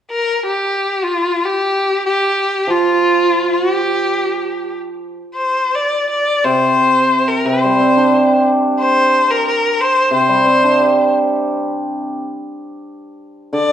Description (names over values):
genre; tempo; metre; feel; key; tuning
chinese traditional, Chinese chamber ensemble; 70-91 BPM; 2/4; rubato; G yu mode; A4 = 440 Hz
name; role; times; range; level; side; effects
bright erhu; melody; 0.1-13.7 s; F4 to D5; -14 LUFS; left 2 dB; none
hammered dulcimer; accompaniment; 2.7-13.7 s; C3 to G4; -16 LUFS; right 2 dB; none
room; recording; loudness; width
moderate recital hall reverb, RT60 1.4 s; dark, warm production; -13 LUFS; side -10 dB against mid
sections
0.0-6.1 A section; 6.1-13.7 B section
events
none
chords
none